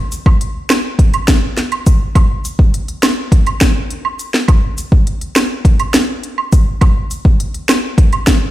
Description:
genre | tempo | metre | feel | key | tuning
dancehall | 103 BPM | 4/4 | straight | none | none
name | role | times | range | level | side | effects
afro-pop drum kit | drums | 0.1-8.4 s | hi-hat, kick drum, snare drum | -11 LUFS | equal | none
cabasa and woodblock | percussion | 0.1-8.4 s | none | -23 LUFS | right 5 dB | none
room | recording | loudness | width
light reverb | played on a big sound system in a bare room, stone room reverb | -11 LUFS | side -15 dB against mid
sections
0.0-8.5 A section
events
none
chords
none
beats
0.41 0.99 1.57 | 2.15 2.74 3.32 3.90 | 4.49 5.07 5.65 6.23 | 6.82 7.40 7.98

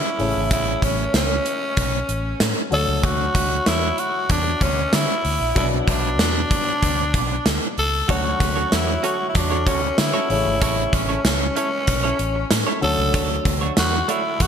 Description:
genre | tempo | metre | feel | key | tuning
1980s-style pop | 95 BPM | 4/4 | straight | unclear | A4 = 439 Hz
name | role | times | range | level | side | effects
raspy tenor saxophone | melody | 0.0-14.5 s | C#4 to A4 | -23 LUFS | equal | slapback echo
warm baby grand piano | accompaniment | 0.0-14.5 s | B2 to C#5 | -28 LUFS | left 3 dB | slapback echo
vintage muted fingered electric bass | bass | 0.2-14.5 s | G#1 to D3 | -25 LUFS | equal | none
gated 80s drum kit | drums | 0.2-14.5 s | hi-hat, kick drum, snare drum, tambourine | -22 LUFS | right 1 dB | none
direct-recorded clean electric guitar | riff | 8.1-14.4 s | A3 to C#5 | -28 LUFS | right 4 dB | lush chorus, ping-pong delay, slapback echo
room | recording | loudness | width
moderate lush hall reverb, RT60 2.6 s | big arena sound | -18 LUFS | side -8 dB against mid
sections
0.0-14.5 A section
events
none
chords
0.2 A; 2.7 Dmaj7; 5.6 Bm; 8.1 Dmaj7; 10.3 A; 12.8 Dmaj7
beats
| 0.51 1.14 1.77 2.40 | 3.04 3.67 4.30 4.93 | 5.56 6.20 6.83 7.46 | 8.09 8.72 9.35 9.98 | 10.62 11.25 11.88 12.51 | 13.14 13.77 14.40

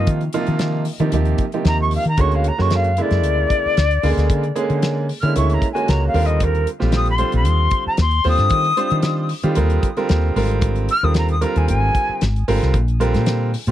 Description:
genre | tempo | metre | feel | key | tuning
electric jazz fusion | 114 BPM | 4/4 | straight | unclear | A4 = 438 Hz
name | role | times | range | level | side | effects
jazz flute | melody | 0.0-12.2 s | Bb4 to F6 | -21 LUFS | left 2 dB | none
bright grand piano | accompaniment | 0.0-13.7 s | C3 to C5 | -22 LUFS | right 4 dB | none
woody fretless electric bass | bass | 0.0-13.7 s | Ab1 to Eb3 | -18 LUFS | equal | lush chorus
damped 70s drum kit | drums | 0.1-13.7 s | hi-hat, kick drum, snare drum | -23 LUFS | left 1 dB | none
room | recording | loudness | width
little or no reverb | dry, close 1970s-style studio recording | -16 LUFS | side -12 dB against mid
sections
0.0-13.7 A section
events
flute solo 0.0-13.7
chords
0.0 Ebadd9; 2.2 Bb7alt/D; 6.1 Ebmaj9; 10.4 Abmaj9; 12.7 Bbadd9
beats
| 0.08 0.61 1.13 1.66 | 2.19 2.72 3.24 3.77 | 4.30 4.83 5.36 5.88 | 6.41 6.94 7.46 7.99 | 8.52 9.05 9.57 10.10 | 10.63 11.16 11.69 12.21 | 12.74 13.27

